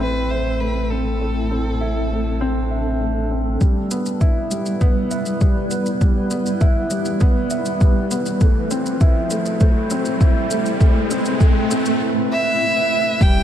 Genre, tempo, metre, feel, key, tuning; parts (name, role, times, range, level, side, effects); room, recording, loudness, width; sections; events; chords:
piano and strings electronica; 100 BPM; 4/4; straight; A minor; A4 = 441 Hz
warm violin; melody; 0.0-3.0, 12.3-13.4 s; A4 to G5; -22 LUFS; right 1 dB
granular cloud pad; sustained chords; 0.0-13.4 s; G3 to C5; -26 LUFS; right 1 dB; built-in reverb
dark grand piano; riff; 0.0-13.4 s; G3 to E5; -22 LUFS; equal; tape echo
warm sub bass; bass; 0.0-3.6, 13.2-13.4 s; E1 to A1; -23 LUFS; equal; sidechain pumping
electronic kick drum; drums; 3.6-13.3 s; -15 LUFS; equal
shaker; drums; 3.6-13.3 s; -32 LUFS; left 1 dB
riser and swell; sound effects; 6.2-13.2 s; -27 LUFS; right 2 dB
light reverb, digital ambience; -16 LUFS; side -10 dB against mid
0.0-3.6 A section; 3.6-13.2 B section
build-up 3.6-13.2; riser 6.2-12.0; swell 12.0-13.2
0.0 Am; 3.6 Em; 8.4 Am